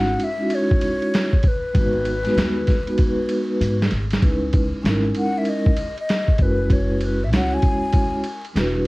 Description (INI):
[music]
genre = hip hop, jazz-hop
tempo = 97 BPM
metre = 4/4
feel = swing 65% on 16ths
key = C# dorian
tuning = A4 = 439 Hz
[part]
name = breathy mellow concert flute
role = melody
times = 0.0-8.5 s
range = B4 to G#5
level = -26 LUFS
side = left 2 dB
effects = none
[part]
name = vibraphone with soft mallets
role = accompaniment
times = 0.0-8.9 s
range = G3 to C#5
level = -22 LUFS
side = equal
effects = none
[part]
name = upright bass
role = bass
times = 0.0-8.9 s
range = E1 to G#2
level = -24 LUFS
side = equal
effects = none
[part]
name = trip hop sampler-style drum kit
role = drums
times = 0.2-8.8 s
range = hi-hat, kick drum, ride cymbal, snare drum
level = -21 LUFS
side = equal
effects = none
[sound]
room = light reverb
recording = dark, warm production, vinyl crackle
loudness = -18 LUFS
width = side -22 dB against mid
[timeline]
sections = 0.0-4.2 A section; 4.2-8.9 B section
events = drum fill 3.0-4.2; flute solo 4.2-8.9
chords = 0.0 C#m; 1.8 G#m7; 4.2 C#m9; 6.4 F#9sus4